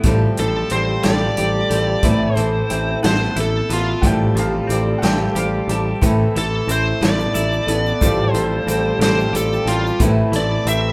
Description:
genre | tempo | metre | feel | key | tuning
folk rock and heartland rock | 60 BPM (dotted quarters) | 6/8 | straight | unclear | A4 = 440 Hz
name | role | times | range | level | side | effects
picked old ladder-braced acoustic guitar | accompaniment | 0.0-10.9 s | A2 to A4 | -25 LUFS | equal | none
pedal harmonium | sustained chords | 0.0-10.9 s | G3 to B4 | -30 LUFS | equal | none
twelve-string electric guitar | riff | 0.0-10.9 s | A2 to G4 | -29 LUFS | equal | phaser
picked electric bass | bass | 0.0-10.9 s | A1 | -24 LUFS | equal | none
vintage drum kit | drums | 0.0-10.8 s | hi-hat, kick drum, snare drum | -23 LUFS | equal | none
bluesy overdriven lead guitar | melody | 0.4-10.9 s | F4 to E5 | -24 LUFS | equal | distortion
bright upright piano | second line | 4.0-6.2 s | D5 to A5 | -31 LUFS | equal | none
egg shaker | percussion | 6.0-10.8 s | none | -37 LUFS | equal | none
room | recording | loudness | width
moderate studio reverb, RT60 0.8 s | band playing live in one room | -18 LUFS | mono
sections
0.0-10.9 A section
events
lead electric guitar solo 0.0-10.9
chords
0.0 Fadd9/A; 2.0 Amadd9; 4.0 Fadd9/A; 6.0 Amadd9; 8.0 Fadd9/A; 10.0 Amadd9

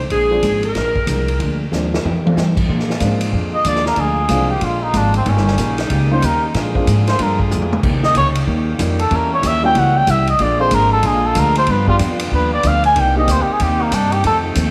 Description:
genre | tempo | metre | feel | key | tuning
jazz, big band swing | 187 BPM | 4/4 | swing 63% on 8ths | Bb mixolydian | A4 = 440 Hz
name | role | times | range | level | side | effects
upright bass | bass | 0.0-14.7 s | G1 to Bb2 | -21 LUFS | equal | none
edgy saxophone section | melody | 0.1-1.6 s | Ab4 to Bb4 | -22 LUFS | equal | tape echo
vintage hollow-body jazz guitar | accompaniment | 0.1-14.7 s | F2 to G4 | -27 LUFS | equal | none
swinging big-band drum kit | drums | 0.1-14.7 s | crash cymbal, hi-hat, kick drum, ride cymbal, snare drum, toms | -25 LUFS | equal | none
warm baby grand piano | accompaniment | 0.3-13.3 s | F3 to Ab4 | -27 LUFS | equal | none
clear saxophone section | sustained chords | 2.7-14.7 s | C3 to Ab4 | -28 LUFS | equal | none
trumpet with cup mute | melody | 3.6-14.4 s | Bb3 to Ab5 | -19 LUFS | equal | none
room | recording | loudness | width
moderate echo chamber reverb, RT60 1.9 s, small room reverb | none | -16 LUFS | mono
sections
0.0-2.7 A section; 2.7-14.7 B section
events
drum fill 1.7-2.4, 7.5-7.8; muted trumpet solo 2.7-14.7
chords
0.1 Bb7; 2.0 F9; 2.7 Bb7; 5.3 Eb7; 6.5 Bb7; 7.8 Eb7; 9.1 Edim7; 10.4 Bb7; 11.7 G7; 13.0 Cm7

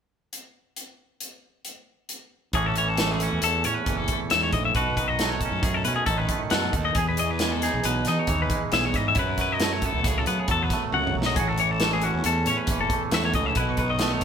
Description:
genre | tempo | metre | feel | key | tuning
math rock and midwest emo | 136 BPM | 5/4 | straight | A lydian | A4 = 440 Hz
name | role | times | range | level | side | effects
modern studio drum kit | drums | 0.3-14.2 s | hi-hat, kick drum, snare drum, toms | -28 LUFS | equal | none
twangy electric guitar | accompaniment | 2.5-14.2 s | E2 to A4 | -28 LUFS | right 6 dB | spring reverb
clean electric guitar | arpeggios | 2.5-14.2 s | F#4 to F#5 | -26 LUFS | left 6 dB | none
fuzz fingered electric bass | bass | 2.5-14.2 s | F#1 to F#3 | -28 LUFS | equal | overdrive
room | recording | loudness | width
moderate stone room reverb, RT60 1.2 s | band playing live in one room | -22 LUFS | side -7 dB against mid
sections
0.3-2.5 A section; 2.5-14.2 B section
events
drum fill 10.9-11.4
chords
0.3 N.C.; 2.5 A6; 4.7 B9; 7.0 Emaj7; 9.2 F#m11; 11.4 A6; 13.6 B9

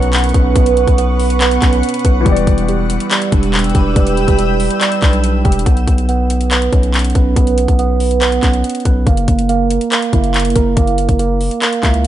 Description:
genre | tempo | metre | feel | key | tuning
hip hop, trap | 141 BPM | 4/4 | half-time | B harmonic minor | A4 = 440 Hz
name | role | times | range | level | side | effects
dark concert grand piano | accompaniment | 0.0-5.7 s | B2 to D5 | -24 LUFS | left 10 dB | none
granular cloud pad | sustained chords | 0.0-5.6 s | B4 to E6 | -22 LUFS | left 2 dB | built-in reverb
mellow tine electric piano | arpeggios | 0.0-12.1 s | G3 to B4 | -16 LUFS | right 6 dB | phaser, tape echo
distorted 808-style bass | bass | 0.0-12.1 s | E1 to C#2 | -16 LUFS | left 1 dB | distortion
trap drum kit | drums | 0.0-12.1 s | handclaps, hi-hat, kick drum | -15 LUFS | left 1 dB | none
room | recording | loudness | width
little or no reverb | nothing above 10.8 kHz | -11 LUFS | side -12 dB against mid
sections
0.0-5.7 A section; 5.7-12.1 B section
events
none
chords
0.0 Bmadd9; 2.3 Em7; 5.7 Bsus2; 9.1 F#7

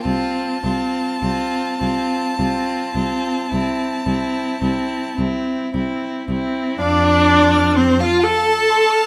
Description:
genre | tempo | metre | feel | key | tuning
classical, slow romantic movement for string quartet | 34-44 BPM (dotted quarters) | 12/8 | rubato | F major | A4 = 440 Hz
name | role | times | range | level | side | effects
clear violin | melody | 0.0-9.1 s | F5 to F6 | -29 LUFS | equal | none
clear violin | second line | 0.0-9.1 s | E4 to A5 | -27 LUFS | equal | none
clear viola | accompaniment | 0.0-9.1 s | C4 to A4 | -21 LUFS | equal | none
rich cello | bass | 0.1-8.0 s | C2 to F2 | -26 LUFS | equal | none
room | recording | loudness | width
light reverb | close, detailed microphones | -19 LUFS | mono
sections
0.0-6.8 A section; 6.8-9.1 B section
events
none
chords
0.1 F/C; 6.8 F

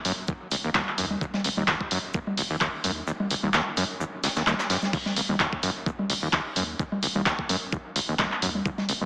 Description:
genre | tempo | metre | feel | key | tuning
acid house | 129 BPM | 4/4 | swing 55% on 16ths | Eb minor | A4 = 440 Hz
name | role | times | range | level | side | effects
punchy analog drum machine | drums | 0.0-9.1 s | congas, crash cymbal, handclaps, hi-hat | -26 LUFS | equal | none
overdriven acid bass | riff | 0.1-9.1 s | Db2 to Gb2 | -30 LUFS | equal | distortion, tube saturation, analog chorus, sidechain pumping, dub echo
warm sub bass | bass | 0.1-9.1 s | Eb1 to Eb2 | -44 LUFS | equal | sidechain pumping
jazz brush drum kit | drums | 0.1-9.0 s | hi-hat, shaker, snare drum | -36 LUFS | equal | sidechain pumping on hats, high-pass filter on hats, high-pass filter on snare, sidechain pumping on perc, high-pass filter on perc, high-pass filter on room
electronic kick drum | drums | 0.3-8.8 s | none | -29 LUFS | equal | overdrive
room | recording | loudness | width
moderate lush hall reverb, RT60 2.1 s | small speaker sound | -24 LUFS | side -28 dB against mid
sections
0.0-9.1 A section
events
none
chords
none

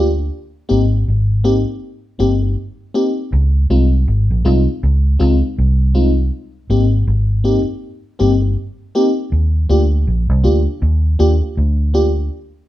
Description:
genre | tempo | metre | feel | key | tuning
lovers rock reggae | 80 BPM | 4/4 | swing 59% on 16ths | Eb major | A4 = 439 Hz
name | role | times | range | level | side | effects
FM electric piano with soft pad layer | accompaniment | 0.0-12.1 s | Ab3 to G4 | -17 LUFS | left 1 dB | chorus, tremolo
vintage muted fingered electric bass | bass | 0.0-12.3 s | G1 to Eb2 | -14 LUFS | equal | none
room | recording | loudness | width
moderate studio reverb, RT60 0.9 s | band playing live in one room | -13 LUFS | side -14 dB against mid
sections
0.0-12.7 A section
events
none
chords
0.3 Abmaj9; 3.3 Dbmaj7; 6.3 Abmaj9; 9.3 Ebmaj7

